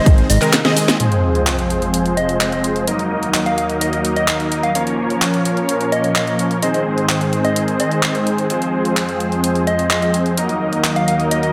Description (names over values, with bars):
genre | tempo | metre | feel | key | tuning
EDM, festival progressive house | 128 BPM | 4/4 | straight | unclear | A4 = 442 Hz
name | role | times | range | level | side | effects
soft struck synth lead | melody | 0.0-11.5 s | Eb5 to F5 | -25 LUFS | equal | chorus, delay
lush unison pad | sustained chords | 0.0-11.5 s | Eb2 to F5 | -25 LUFS | equal | chorus, sidechain pumping
unison pluck | arpeggios | 0.0-1.0 s | Bb4 to Eb5 | -27 LUFS | equal | none
supersaw chords | riff | 0.0-11.5 s | Eb3 to Eb5 | -21 LUFS | equal | subtle chorus, sidechain pumping, low-pass filter, delay
house drum kit | drums | 0.1-11.5 s | handclaps, hi-hat, shaker, snare drum | -23 LUFS | equal | none
sub drop | sound effects | 1.0-2.9 s | none | -24 LUFS | equal | none
room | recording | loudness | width
moderate lush hall reverb, RT60 1.7 s, digital ambience | none | -17 LUFS | mono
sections
0.0-1.0 A section; 1.0-11.5 B section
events
drop 0.0-1.0; drum fill 0.5-1.0; impact 1.0-2.9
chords
0.0 Ab; 1.0 Fm; 2.9 Ebm; 4.8 Bbm; 6.6 Ab; 8.5 Fm; 10.4 Ebm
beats
0.06 0.53 | 1.00 1.47 1.94 2.41 | 2.88 3.34 3.81 4.28 | 4.75 5.22 5.69 6.16 | 6.62 7.09 7.56 8.03 | 8.50 8.97 9.44 9.91 | 10.38 10.84 11.31